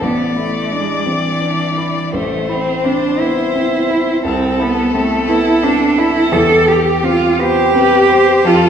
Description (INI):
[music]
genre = classical, slow romantic movement for piano trio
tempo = 57 BPM (dotted quarters)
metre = 6/8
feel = rubato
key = A minor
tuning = A4 = 440 Hz
[part]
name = rich violin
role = melody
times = 0.0-8.7 s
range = G4 to D5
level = -20 LUFS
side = left 6 dB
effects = none
[part]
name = rich cello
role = second line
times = 0.0-8.7 s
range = E3 to A4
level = -14 LUFS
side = right 2 dB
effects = none
[part]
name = warm grand piano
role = accompaniment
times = 0.0-8.7 s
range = A1 to G4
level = -18 LUFS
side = left 1 dB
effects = none
[sound]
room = wet recital hall reverb, RT60 1.5 s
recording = recorded in a church or concert hall, nothing above 10.6 kHz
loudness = -12 LUFS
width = side -8 dB against mid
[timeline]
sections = 0.0-8.7 A section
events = none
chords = 0.0 Amadd11; 2.1 Am; 4.2 C; 6.3 C/E